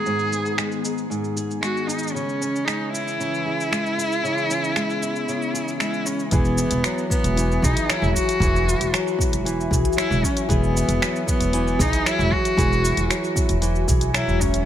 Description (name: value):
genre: folktronica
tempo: 115 BPM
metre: 4/4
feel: straight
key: E major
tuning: A4 = 442 Hz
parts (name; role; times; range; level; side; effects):
- rich cello; melody; 0.0-14.7 s; B3 to G#4; -25 LUFS; right 1 dB; vintage 12-bit sampler grit, digital delay
- warbly tape-like pad; sustained chords; 0.0-14.6 s; D#3 to G#5; -29 LUFS; left 4 dB; chorus, built-in reverb, phaser
- flamenco guitar; arpeggios; 0.0-14.7 s; G#2 to G#4; -27 LUFS; equal; vintage 12-bit sampler grit, low-pass filter, digital delay
- organic electronic drum kit; drums; 0.1-14.6 s; finger snaps, hi-hat, shaker; -27 LUFS; right 1 dB; low-pass filter on perc, low-pass filter on snare, low-pass filter on hats
- upright bass; bass; 6.3-14.6 s; E1 to B1; -22 LUFS; equal; none
- electronic kick drum; drums; 6.3-14.5 s; none; -24 LUFS; equal; none
room: light reverb, small room ambience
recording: none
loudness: -19 LUFS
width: side -10 dB against mid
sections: 0.0-6.3 A section; 6.3-14.7 B section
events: none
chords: 0.0 G#m; 2.1 C#m; 6.3 Eadd9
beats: | 0.06 0.58 1.10 1.62 | 2.15 2.67 3.19 3.71 | 4.23 4.75 5.28 5.80 | 6.32 6.84 7.36 7.88 | 8.41 8.93 9.45 9.97 | 10.49 11.02 11.54 12.06 | 12.58 13.10 13.62 14.15